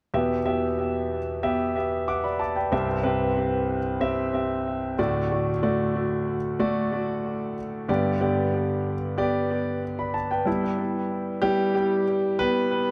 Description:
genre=pop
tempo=93 BPM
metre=4/4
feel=straight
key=E minor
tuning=A4 = 439 Hz
part: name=clear concert grand piano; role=accompaniment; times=0.1-12.9 s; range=C2 to D6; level=-26 LUFS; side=equal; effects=tape echo
room=moderate echo chamber reverb, RT60 2.3 s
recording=echo-heavy mix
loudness=-26 LUFS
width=mono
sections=0.1-10.5 A section; 10.5-12.9 B section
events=grand piano solo 10.5-12.9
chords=0.1 Em; 2.7 C; 5.0 D; 7.9 G; 10.5 Em

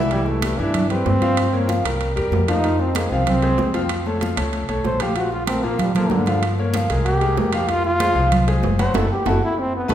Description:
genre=latin, salsa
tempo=190 BPM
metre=4/4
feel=straight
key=C major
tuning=A4 = 440 Hz
part: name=clear concert grand piano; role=accompaniment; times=0.0-9.9 s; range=E3 to F#5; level=-23 LUFS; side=left 1 dB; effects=none
part: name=upright bass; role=bass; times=0.0-9.9 s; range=F#1 to Bb2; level=-23 LUFS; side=equal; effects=none
part: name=bright trombone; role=melody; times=0.1-9.9 s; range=D3 to C5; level=-22 LUFS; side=right 1 dB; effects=none
part: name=congas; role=percussion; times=0.1-9.9 s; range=none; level=-26 LUFS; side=right 1 dB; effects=none
part: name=timbales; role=percussion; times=0.1-9.9 s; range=none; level=-28 LUFS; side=right 5 dB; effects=none
room=wet recital hall reverb, RT60 1.8 s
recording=recorded in a church or concert hall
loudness=-17 LUFS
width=side -11 dB against mid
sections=0.1-9.9 A section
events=trombone solo 0.1-9.9; band accent 8.9-9.9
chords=0.1 Cmaj7; 1.4 Gm7b5; 2.0 C7; 2.6 Fm; 3.9 Faug; 5.2 Bbmaj7; 6.4 Gm7b5; 7.1 C5; 7.7 Fm; 8.9 F#m7

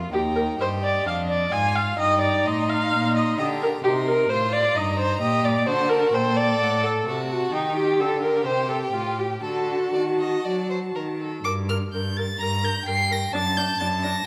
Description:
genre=quick classical-period movement for string quartet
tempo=129 BPM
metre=4/4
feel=rubato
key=G minor from 3.8 s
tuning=A4 = 440 Hz
part: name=rich violin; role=melody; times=0.0-14.3 s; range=F4 to C7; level=-34 LUFS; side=equal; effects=none
part: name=clear violin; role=second line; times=0.0-14.3 s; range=D4 to Bb5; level=-32 LUFS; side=equal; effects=none
part: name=clear cello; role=bass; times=0.0-14.2 s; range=Eb2 to F#3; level=-30 LUFS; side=equal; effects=none
part: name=rich viola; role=accompaniment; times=0.1-14.1 s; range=D4 to Ab5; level=-26 LUFS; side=equal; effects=none
room=wet recital hall reverb, RT60 1.6 s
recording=none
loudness=-23 LUFS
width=mono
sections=0.0-11.4 A section; 11.4-14.3 B section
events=none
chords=0.1 Eb; 1.1 Ddim/F; 2.0 Eb/G; 3.8 Cm; 5.7 D7; 7.5 Eb; 8.5 Am7; 9.4 D; 11.4 Gm; 13.3 D/F#

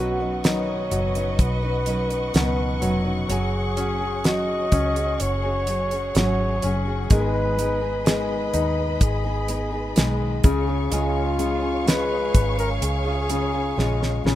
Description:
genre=pop ballad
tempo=63 BPM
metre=4/4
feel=straight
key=unclear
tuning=A4 = 440 Hz
part: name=breathy flugelhorn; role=melody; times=0.0-14.2 s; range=F4 to Eb5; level=-27 LUFS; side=equal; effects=ping-pong delay
part: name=clear baby grand piano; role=accompaniment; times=0.0-14.4 s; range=B2 to Gb4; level=-28 LUFS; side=left 3 dB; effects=none
part: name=warm studio string section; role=sustained chords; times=0.0-14.4 s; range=Ab4 to C#6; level=-32 LUFS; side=equal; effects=none
part: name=nylon-string guitar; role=arpeggios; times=0.0-14.4 s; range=Ab2 to B4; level=-30 LUFS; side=right 1 dB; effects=none
part: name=vintage muted fingered electric bass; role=bass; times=0.0-14.4 s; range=F1 to Eb2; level=-26 LUFS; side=equal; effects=none
part: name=damped 70s drum kit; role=drums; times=0.4-14.4 s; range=hi-hat, kick drum, snare drum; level=-21 LUFS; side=equal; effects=none
room=small room ambience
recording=rough home demo mix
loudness=-20 LUFS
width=side -13 dB against mid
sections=0.0-14.4 A section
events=drum fill 13.8-14.4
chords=0.0 Badd9; 3.3 Gbsus2; 7.1 Abm; 10.4 Db

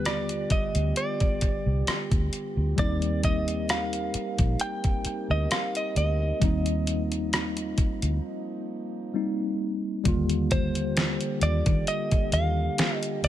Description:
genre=contemporary R&B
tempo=66 BPM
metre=4/4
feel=swing 54% on 16ths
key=Eb major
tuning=A4 = 444 Hz
part: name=direct-recorded clean electric guitar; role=melody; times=0.0-13.3 s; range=C5 to G5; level=-31 LUFS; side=right 1 dB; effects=digital delay
part: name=mellow tine electric piano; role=accompaniment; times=0.0-13.3 s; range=D3 to F4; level=-31 LUFS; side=left 2 dB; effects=medium stereo tremolo
part: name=dark French horn section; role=sustained chords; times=0.0-13.3 s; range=D3 to Bb4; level=-36 LUFS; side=right 3 dB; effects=none
part: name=vintage muted fingered electric bass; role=bass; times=0.0-13.3 s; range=Bb1 to Eb3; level=-27 LUFS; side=equal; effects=none
part: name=detuned 8-bit digital drum machine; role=drums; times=0.1-13.3 s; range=hi-hat, kick drum, rim click, snare drum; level=-26 LUFS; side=equal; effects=none
room=little or no reverb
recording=none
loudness=-24 LUFS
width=side -12 dB against mid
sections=0.0-10.1 A section; 10.1-13.3 B section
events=break 8.2-10.1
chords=0.0 G7; 2.8 Cm9; 6.4 F9sus4; 10.1 Ebmaj9

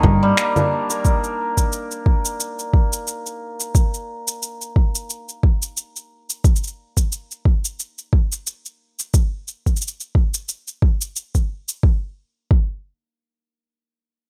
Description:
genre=folktronica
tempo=89 BPM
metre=4/4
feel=swing 56% on 16ths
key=unclear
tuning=A4 = 440 Hz
part: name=hammered dulcimer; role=arpeggios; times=0.0-5.2 s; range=Eb3 to D4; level=-26 LUFS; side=equal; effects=tape echo
part: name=electronic congas, finger snaps and shaker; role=drums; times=0.0-11.8 s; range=none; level=-25 LUFS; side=equal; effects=overdrive
part: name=electronic kick drum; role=drums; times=0.0-12.7 s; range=none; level=-18 LUFS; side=equal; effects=overdrive
room=digital ambience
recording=none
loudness=-21 LUFS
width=mono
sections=0.0-11.8 A section; 11.8-14.3 B section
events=none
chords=0.0 Ebmaj7; 1.0 N.C.

